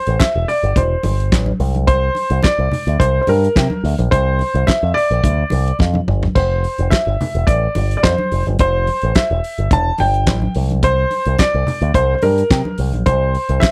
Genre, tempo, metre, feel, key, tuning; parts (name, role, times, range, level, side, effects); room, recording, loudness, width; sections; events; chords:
disco; 107 BPM; 4/4; straight; F major; A4 = 441 Hz
warm concert grand piano; melody; 0.0-13.7 s; Bb4 to A5; -20 LUFS; equal
picked electric bass with an envelope filter; bass; 0.1-13.6 s; E1 to C3; -20 LUFS; equal
warm soul drum kit; drums; 0.1-13.7 s; handclaps, hi-hat, kick drum, snare drum, splash cymbal, toms; -18 LUFS; equal
congas; percussion; 0.2-13.7 s; -27 LUFS; equal
little or no reverb; dry, close 1970s-style studio recording; -16 LUFS; mono
0.0-13.7 A section
drum fill 5.8-6.4
0.0 Fmaj9 (rootless); 1.6 N.C.; 6.4 Fmaj9; 10.5 N.C.